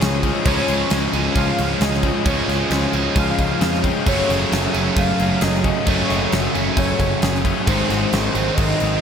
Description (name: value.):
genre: rock, shoegaze and dream pop.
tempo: 133 BPM.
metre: 4/4.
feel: straight.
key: Db major.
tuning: A4 = 438 Hz.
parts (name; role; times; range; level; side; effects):
warm velvety synth lead; melody; 0.0-9.0 s; C5 to F5; -26 LUFS; equal; chorus, ping-pong delay.
direct-recorded clean electric guitar; arpeggios; 0.0-9.0 s; Eb3 to Ab4; -29 LUFS; left 5 dB; analog chorus, ping-pong delay.
biting overdriven guitar; riff; 0.0-9.0 s; Gb2 to Eb4; -23 LUFS; right 7 dB; reverse reverb.
overdriven semi-hollow guitar; riff; 0.0-9.0 s; Gb2 to Eb4; -25 LUFS; left 6 dB; analog chorus.
overdriven semi-hollow guitar; riff; 0.0-9.0 s; Gb2 to Db4; -26 LUFS; equal; lush chorus.
picked electric bass; bass; 0.0-9.0 s; Gb1 to F2; -24 LUFS; equal; none.
huge arena drum kit; drums; 0.0-8.9 s; crash cymbal, kick drum, snare drum; -22 LUFS; equal; none.
room: wet huge ambient reverb, RT60 7.8 s.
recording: dreamy mix soaked in reverb.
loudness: -16 LUFS.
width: side -7 dB against mid.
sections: 0.0-9.0 A section.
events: none.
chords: 0.0 Db; 4.1 Gbmadd9; 7.7 Ab7.